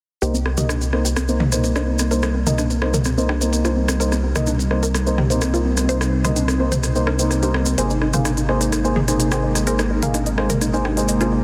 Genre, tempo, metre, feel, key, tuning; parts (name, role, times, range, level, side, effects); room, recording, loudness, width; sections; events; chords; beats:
progressive house; 127 BPM; 4/4; straight; C minor; A4 = 439 Hz
lush unison pad; sustained chords; 1.5-11.4 s; C3 to Eb4; -26 LUFS; equal; chorus
analog pluck; arpeggios; 0.2-11.4 s; C4 to C5; -29 LUFS; equal; chorus, phaser, tape echo
clear baby grand piano; stabs; 0.2-11.4 s; Bb3 to F5; -26 LUFS; equal; low-pass filter, tape echo
round analog bass; bass; 0.2-11.4 s; Ab1 to C2; -25 LUFS; equal
electronic hi-hat; drums; 0.2-11.3 s; -33 LUFS; equal; overdrive, low-pass filter on hats
maracas; percussion; 0.2-11.3 s; -32 LUFS; equal
punchy analog drum machine; percussion; 0.5-11.3 s; congas, rim click, toms; -27 LUFS; equal; soft clipping on snare
light reverb, digital ambience; dense, heavily limited modern master; -19 LUFS; mono
0.2-11.4 A section
filter sweep on synth arpeggio sound 0.2-11.4; filter sweep on analog synth pad 0.2-11.4
0.2 Cm7; 7.8 Abadd9
| 0.22 0.69 1.17 1.64 | 2.11 2.58 3.06 3.53 | 4.00 4.47 4.95 5.42 | 5.89 6.36 6.83 7.31 | 7.78 8.25 8.72 9.20 | 9.67 10.14 10.61 11.09